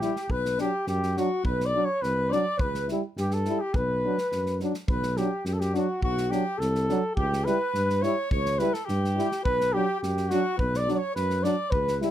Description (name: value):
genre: balkan folk, Balkan brass band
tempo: 105 BPM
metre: 2/4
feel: straight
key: B minor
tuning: A4 = 440 Hz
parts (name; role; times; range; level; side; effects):
- mellow flugelhorn; melody; 0.0-12.0 s; F#4 to D5; -28 LUFS; right 1 dB; none
- clear alto saxophone; second line; 0.0-12.0 s; F#4 to D5; -33 LUFS; left 7 dB; none
- warm French horn; accompaniment; 0.0-12.1 s; D4 to E4; -30 LUFS; left 8 dB; none
- warm euphonium; accompaniment; 0.0-12.1 s; F#3 to G3; -31 LUFS; right 8 dB; none
- mellow tuba; bass; 0.0-12.0 s; B1 to G2; -29 LUFS; equal; none
- natural country drum kit; percussion; 0.0-12.1 s; kick drum, snare drum; -32 LUFS; equal; none
room: light reverb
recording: close, detailed microphones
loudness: -24 LUFS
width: side -11 dB against mid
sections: 0.0-4.9 A section; 4.9-12.1 A section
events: none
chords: 0.3 Bm; 2.6 C#dim; 3.7 Bm; 7.2 C#dim; 9.4 Bm